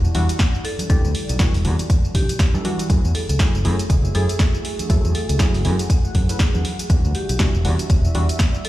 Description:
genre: deep house.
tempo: 120 BPM.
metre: 4/4.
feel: swing 58% on 16ths.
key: F# phrygian.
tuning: A4 = 437 Hz.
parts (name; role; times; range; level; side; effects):
deep dark ambient pad; sustained chords; 0.0-8.7 s; G3 to F#5; -30 LUFS; equal; chorus, built-in reverb, sidechain pumping.
fingered electric bass; bass; 0.0-8.2 s; E1 to F#2; -20 LUFS; equal; sidechain pumping.
punchy analog drum machine; drums; 0.0-8.7 s; hi-hat, snare drum, tambourine; -27 LUFS; equal; none.
warm analog keys; stabs; 0.1-8.3 s; E3 to B4; -28 LUFS; equal; chorus, sidechain pumping, digital delay.
electronic kick drum; drums; 0.4-8.5 s; none; -18 LUFS; equal; overdrive.
marimba with medium mallets; melody; 0.6-8.7 s; G4 to A4; -32 LUFS; equal; digital delay.
congas; percussion; 0.8-6.6 s; none; -30 LUFS; right 1 dB; none.
room: digital ambience.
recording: played on a big sound system in a bare room, stone room reverb.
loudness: -16 LUFS.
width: side -16 dB against mid.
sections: 0.0-8.7 A section.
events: none.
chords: 0.0 Em9; 2.9 F#m9; 6.9 Em9.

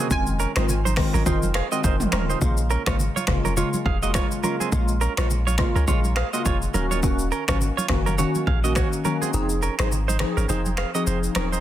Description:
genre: afrobeats.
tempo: 104 BPM.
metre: 4/4.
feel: swing 58% on 16ths.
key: Bb minor.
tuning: A4 = 441 Hz.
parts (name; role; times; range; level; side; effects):
analog pluck; melody; 0.0-0.9 s; Gb5 to Ab5; -32 LUFS; right 2 dB; chorus, plate reverb, digital delay.
glassy digital keys; accompaniment; 0.0-11.6 s; Db3 to Ab4; -26 LUFS; left 2 dB; chorus, plate reverb.
direct-recorded clean electric guitar; riff; 0.0-11.6 s; C4 to F5; -28 LUFS; right 8 dB; spring reverb, digital delay.
punchy sub bass; bass; 0.1-11.6 s; Eb1 to Db2; -24 LUFS; equal; none.
deep house drum kit; drums; 0.1-11.6 s; finger snaps, hi-hat, kick drum, rim click, shaker, toms; -25 LUFS; equal; soft clipping on snare.
congas; percussion; 0.1-11.6 s; none; -32 LUFS; right 2 dB; none.
room: light reverb.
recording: dense, heavily limited modern master.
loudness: -20 LUFS.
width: side -12 dB against mid.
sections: 0.0-2.4 A section; 2.4-11.6 B section.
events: kick muted 9.3-11.6.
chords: 0.0 Eb7(no3); 2.4 Bbm7; 6.7 Ebm7.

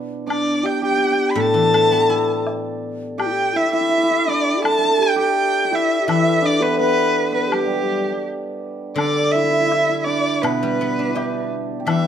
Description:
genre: chinese traditional, Chinese chamber ensemble.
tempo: 83 BPM.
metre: 2/4.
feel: rubato.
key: G gong mode.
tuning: A4 = 440 Hz.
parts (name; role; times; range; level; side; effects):
hammered dulcimer; second line; 0.0-12.1 s; G3 to A4; -22 LUFS; right 5 dB; none.
guzheng; accompaniment; 0.0-3.5, 6.1-12.1 s; A2 to G4; -23 LUFS; left 3 dB; none.
clear erhu; melody; 0.3-12.1 s; G4 to B5; -20 LUFS; equal; none.
mellow hollow low xiao; second line; 0.3-8.2 s; D4 to D5; -22 LUFS; left 5 dB; none.
woodblock; percussion; 0.3-12.0 s; none; -27 LUFS; left 3 dB; none.
room: moderate recital hall reverb, RT60 1.6 s.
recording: close, detailed microphones.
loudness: -16 LUFS.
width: side -9 dB against mid.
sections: 0.0-9.0 A section; 9.0-12.1 B section.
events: none.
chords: none.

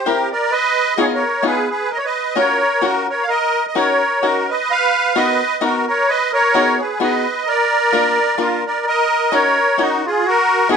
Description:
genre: musette waltz.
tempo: 130 BPM.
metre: 3/4.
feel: swing 54% on 8ths.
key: Eb minor.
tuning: A4 = 445 Hz.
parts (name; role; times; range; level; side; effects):
musette accordion; melody; 0.0-10.8 s; Eb4 to F5; -15 LUFS; right 1 dB; none.
bluegrass banjo; accompaniment; 0.1-10.8 s; Bb3 to Bb4; -19 LUFS; left 4 dB; none.
room: moderate studio reverb, RT60 0.6 s.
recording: band playing live in one room, nothing above 10.6 kHz.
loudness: -14 LUFS.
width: side -6 dB against mid.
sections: 0.0-10.8 A section.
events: none.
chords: 0.0 C7; 0.5 Fm7b5; 1.9 Gbmaj7; 3.3 Ebm7; 4.7 Bmaj7; 6.1 Abm7; 7.5 Bb; 8.9 Ebm7; 10.2 Abm7.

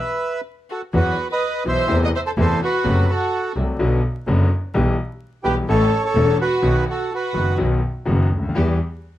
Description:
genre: tango.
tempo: 126 BPM.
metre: 4/4.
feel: rubato.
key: E harmonic minor.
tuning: A4 = 439 Hz.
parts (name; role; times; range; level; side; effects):
bandoneon; melody; 0.0-7.6 s; F#4 to F#5; -22 LUFS; right 3 dB; none.
warm studio violin section; second line; 0.0-7.6 s; F#4 to D#5; -26 LUFS; left 2 dB; none.
bright concert grand piano; accompaniment; 0.9-8.8 s; E1 to A4; -22 LUFS; left 2 dB; none.
rich double bass; bass; 0.9-8.8 s; E1 to E2; -20 LUFS; equal; none.
clear studio string section; stabs; 8.6-8.8 s; B3 to G4; -34 LUFS; left 1 dB; none.
room: light reverb.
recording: dark, warm production, vinyl crackle.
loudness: -17 LUFS.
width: side -14 dB against mid.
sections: 0.9-9.2 A section.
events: stop 0.0-0.9.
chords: 0.0 E5; 0.9 Esus2; 1.9 Am/E; 2.8 F#dim; 3.8 Bm; 4.7 Em/B; 5.7 A; 6.6 B; 8.6 Em.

